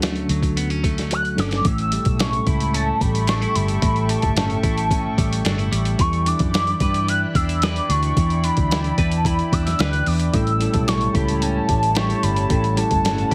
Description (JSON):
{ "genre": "indie pop, bedroom pop", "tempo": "111 BPM", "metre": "4/4", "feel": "straight", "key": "unclear", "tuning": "A4 = 440 Hz", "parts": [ { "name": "warm velvety synth lead", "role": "melody", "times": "0.0-13.3 s", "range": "F#3 to F#6", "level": "-27 LUFS", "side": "equal", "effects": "analog chorus, slapback echo" }, { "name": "clean electric guitar", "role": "accompaniment", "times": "0.0-13.3 s", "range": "A2 to B4", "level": "-28 LUFS", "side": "equal", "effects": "subtle chorus, vibrato effect" }, { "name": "reed electric piano", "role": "accompaniment", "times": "0.0-1.7, 10.3-13.3 s", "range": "F#3 to A4", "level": "-29 LUFS", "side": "equal", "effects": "cassette tape" }, { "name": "vintage muted fingered electric bass", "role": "bass", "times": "0.0-13.3 s", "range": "G1 to G2", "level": "-25 LUFS", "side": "equal", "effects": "none" }, { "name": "boom bap sampler-style drum kit", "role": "drums", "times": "0.0-13.3 s", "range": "hi-hat, kick drum, snare drum", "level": "-25 LUFS", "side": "equal", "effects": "none" }, { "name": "warbly tape-like pad", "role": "sustained chords", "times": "1.7-13.3 s", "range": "E4 to C#6", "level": "-33 LUFS", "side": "equal", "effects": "chorus, built-in reverb" } ], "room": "light reverb", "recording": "heavily compressed radio sound, multiband compression", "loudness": "-20 LUFS", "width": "mono", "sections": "0.0-1.6 A section; 1.6-13.3 B section", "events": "drum fill 1.1-1.6", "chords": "0.0 Dmaj7; 1.6 A7; 6.0 Em7; 10.3 A7", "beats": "0.02 0.56 1.11 | 1.65 2.19 2.74 3.28 | 3.82 4.37 4.91 5.45 | 5.99 6.54 7.08 7.62 | 8.16 8.71 9.25 9.79 | 10.33 10.88 11.42 11.96 | 12.50 13.04" }